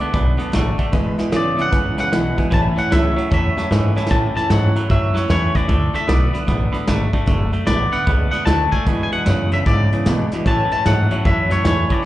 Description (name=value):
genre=rockabilly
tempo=151 BPM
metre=4/4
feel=swing 64% on 8ths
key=A major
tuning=A4 = 442 Hz
part: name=twangy electric guitar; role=melody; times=0.0-12.1 s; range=C#5 to A5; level=-22 LUFS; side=left 2 dB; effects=spring reverb, slapback echo, tape echo
part: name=picked steel-string acoustic guitar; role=accompaniment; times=0.0-12.0 s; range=E2 to F#4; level=-26 LUFS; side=left 3 dB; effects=slapback echo
part: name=warm upright piano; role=accompaniment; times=0.0-4.0, 10.5-12.1 s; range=B4 to B5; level=-31 LUFS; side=left 1 dB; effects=slapback echo
part: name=twangy electric guitar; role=riff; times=0.0-12.0 s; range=E2 to B3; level=-24 LUFS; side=right 3 dB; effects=spring reverb, slapback echo
part: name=upright bass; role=bass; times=0.0-11.9 s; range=E1 to B2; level=-20 LUFS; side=equal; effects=none
part: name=vintage brush drum kit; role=drums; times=0.1-12.0 s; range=hi-hat, kick drum, snare drum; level=-21 LUFS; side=equal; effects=none
room=light reverb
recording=live gig heard through the venue's PA, club reverb, nothing above 10.8 kHz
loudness=-15 LUFS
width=side -15 dB against mid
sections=0.0-4.1 A section; 4.1-12.1 A section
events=drum fill 3.9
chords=0.0 D; 0.9 E7; 2.5 A; 5.7 D; 8.9 E7; 10.5 A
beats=0.14 0.53 | 0.93 1.33 1.72 2.12 | 2.52 2.91 3.31 3.71 | 4.10 4.50 4.90 5.29 | 5.69 6.09 6.49 6.88 | 7.28 7.68 8.07 8.47 | 8.87 9.26 9.66 10.06 | 10.45 10.85 11.25 11.64 | 12.04